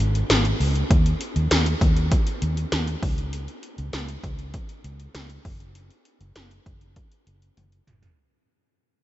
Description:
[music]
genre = 1980s-style pop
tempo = 99 BPM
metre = 4/4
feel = straight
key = unclear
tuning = A4 = 440 Hz
[part]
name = vintage muted fingered electric bass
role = bass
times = 0.0-8.1 s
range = F1 to Eb2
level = -24 LUFS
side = equal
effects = none
[part]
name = 80s electronic pad drums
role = drums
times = 0.0-8.2 s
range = hi-hat, kick drum, snare drum, toms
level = -23 LUFS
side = equal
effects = gated reverb on snare and toms
[sound]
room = light reverb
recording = nothing above 7.9 kHz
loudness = -20 LUFS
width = side -14 dB against mid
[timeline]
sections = 0.0-8.2 A section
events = fade-out 0.0-8.2; drum fill 7.6-8.2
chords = none

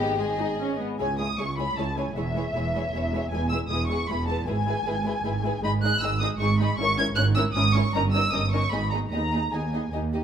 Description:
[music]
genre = quick classical-period movement for string orchestra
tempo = 155 BPM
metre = 3/4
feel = straight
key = C# minor, G# minor from 5.6 s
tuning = A4 = 440 Hz
[part]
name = dark studio violin section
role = melody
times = 0.0-9.9 s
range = D#5 to G#6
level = -28 LUFS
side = equal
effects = none
[part]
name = dark studio violin section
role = second line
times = 0.0-10.2 s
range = G4 to D#5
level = -33 LUFS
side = left 3 dB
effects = none
[part]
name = dark studio viola section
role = accompaniment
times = 0.0-10.2 s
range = G#3 to G#4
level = -33 LUFS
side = equal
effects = none
[part]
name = warm studio cello section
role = bass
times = 0.0-10.2 s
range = C#2 to G#2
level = -29 LUFS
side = right 2 dB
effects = none
[part]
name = warm studio double bass section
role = bass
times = 0.0-10.2 s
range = E1 to D#2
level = -29 LUFS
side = right 2 dB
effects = none
[sound]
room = moderate scoring stage reverb, RT60 1.7 s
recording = close, detailed microphones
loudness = -23 LUFS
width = side -8 dB against mid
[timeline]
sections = 1.0-10.2 A section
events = none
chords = 0.0 G#m; 1.0 C#m; 2.2 C#m/E; 4.5 E/G#; 5.6 G#5; 6.8 A#m7b5/G#; 8.0 D#7/G; 8.7 G#m; 9.1 G#m/D#

